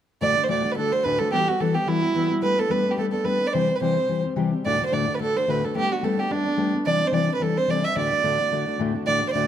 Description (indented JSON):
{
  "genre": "celtic folk",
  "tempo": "217 BPM",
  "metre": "4/4",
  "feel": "swing 54% on 8ths",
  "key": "D mixolydian",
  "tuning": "A4 = 440 Hz",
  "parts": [
    { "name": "dark fiddle", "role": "melody", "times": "0.2-9.5 s", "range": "D4 to E5", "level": "-22 LUFS", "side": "right 3 dB", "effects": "none" },
    { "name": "fingerpicked steel-string acoustic guitar", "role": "accompaniment", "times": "0.2-9.5 s", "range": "D2 to G4", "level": "-25 LUFS", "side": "left 4 dB", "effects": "none" }
  ],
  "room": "moderate recital hall reverb, RT60 1.6 s",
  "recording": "close, detailed microphones",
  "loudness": "-20 LUFS",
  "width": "side -10 dB against mid",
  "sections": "0.2-9.1 A section",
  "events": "none",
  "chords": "0.2 D; 1.3 Emadd9; 2.4 Gadd9; 3.5 C; 4.6 D; 5.8 Gadd9; 6.9 Cadd9; 8.0 D",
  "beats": "| 0.21 0.49 0.77 1.04 | 1.32 1.60 1.88 2.16 | 2.43 2.71 2.99 3.27 | 3.54 3.82 4.09 4.37 | 4.65 4.92 5.20 5.48 | 5.75 6.03 6.31 6.58 | 6.86 7.14 7.41 7.69 | 7.97 8.24 8.52 8.79 | 9.07 9.35"
}